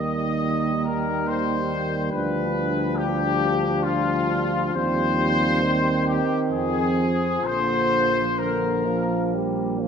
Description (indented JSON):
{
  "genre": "classical, hymn-like piece for brass band",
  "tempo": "62-71 BPM",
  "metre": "3/4",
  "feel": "rubato",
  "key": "Eb major",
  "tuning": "A4 = 440 Hz",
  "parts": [
    { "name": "clear trumpet section", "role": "melody", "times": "0.0-9.3 s", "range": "F4 to Eb5", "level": "-25 LUFS", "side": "left 4 dB", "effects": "none" },
    { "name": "mellow French horn section", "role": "second line", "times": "0.0-9.9 s", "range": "Bb3 to D4", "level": "-28 LUFS", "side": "right 5 dB", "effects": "none" },
    { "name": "clear euphonium", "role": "accompaniment", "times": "0.0-9.9 s", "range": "F3 to G3", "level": "-30 LUFS", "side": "left 2 dB", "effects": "none" },
    { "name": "clear trombone", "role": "accompaniment", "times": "0.0-9.9 s", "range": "D3 to G3", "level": "-29 LUFS", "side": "right 2 dB", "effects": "none" },
    { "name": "mellow tuba", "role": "bass", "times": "0.0-9.9 s", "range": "Bb1 to F2", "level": "-27 LUFS", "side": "right 1 dB", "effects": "none" }
  ],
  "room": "moderate scoring stage reverb, RT60 1.6 s",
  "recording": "none",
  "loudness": "-20 LUFS",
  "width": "side -6 dB against mid",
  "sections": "0.0-9.9 A section",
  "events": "none",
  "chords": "0.0 Eb; 2.1 G7/D; 4.7 Cm/Eb; 6.5 Fm7; 7.4 Bb"
}